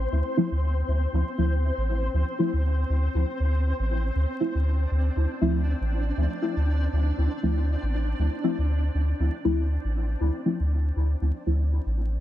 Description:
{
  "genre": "dub techno",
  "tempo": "119 BPM",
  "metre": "4/4",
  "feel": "swing 56% on 16ths",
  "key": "D minor",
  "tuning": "A4 = 440 Hz",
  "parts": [
    { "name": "soft dub sub bass", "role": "bass", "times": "0.0-12.2 s", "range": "A1 to D2", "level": "-23 LUFS", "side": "equal", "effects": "none" },
    { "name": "flickering grainy texture", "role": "texture", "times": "0.0-12.2 s", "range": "C4 to C5", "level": "-33 LUFS", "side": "equal", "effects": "built-in reverb" },
    { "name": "deep mellow chord stab", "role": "stabs", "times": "0.4-11.6 s", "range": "F3 to E4", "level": "-29 LUFS", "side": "left 1 dB", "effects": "chorus, phaser, dub echo" }
  ],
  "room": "digital ambience",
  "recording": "vinyl crackle",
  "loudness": "-23 LUFS",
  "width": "side -13 dB against mid",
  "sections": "0.0-12.2 A section",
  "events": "none",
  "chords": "0.0 Dm9"
}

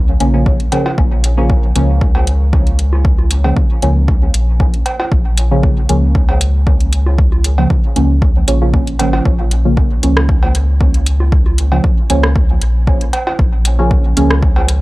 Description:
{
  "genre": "dub techno",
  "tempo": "116 BPM",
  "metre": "4/4",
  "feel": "straight",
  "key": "Bb minor",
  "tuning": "A4 = 440 Hz",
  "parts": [
    { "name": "soft dub sub bass", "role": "bass", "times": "0.0-14.8 s", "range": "Ab1 to Db2", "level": "-14 LUFS", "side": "equal", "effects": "sidechain pumping" },
    { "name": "deep mellow chord stab", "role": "stabs", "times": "0.2-14.5 s", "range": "Db3 to Db4", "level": "-18 LUFS", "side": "right 1 dB", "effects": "chorus, phaser, vintage 12-bit sampler grit, dub echo" },
    { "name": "deep house drum kit", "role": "drums", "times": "0.2-14.8 s", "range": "hi-hat, rim click", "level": "-19 LUFS", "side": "equal", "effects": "overdrive" },
    { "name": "electronic kick drum", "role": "drums", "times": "0.5-14.5 s", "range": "none", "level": "-14 LUFS", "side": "equal", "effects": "overdrive" },
    { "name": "cowbell and congas", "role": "percussion", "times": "0.7-14.7 s", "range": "none", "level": "-22 LUFS", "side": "right 2 dB", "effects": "overdrive, sidechain pumping on perc, dub echo" }
  ],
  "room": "little or no reverb",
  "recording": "dry, gritty hardware recording, cassette tape",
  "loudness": "-10 LUFS",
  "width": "side -20 dB against mid",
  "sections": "0.0-14.8 A section",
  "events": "none",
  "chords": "0.0 Bbm"
}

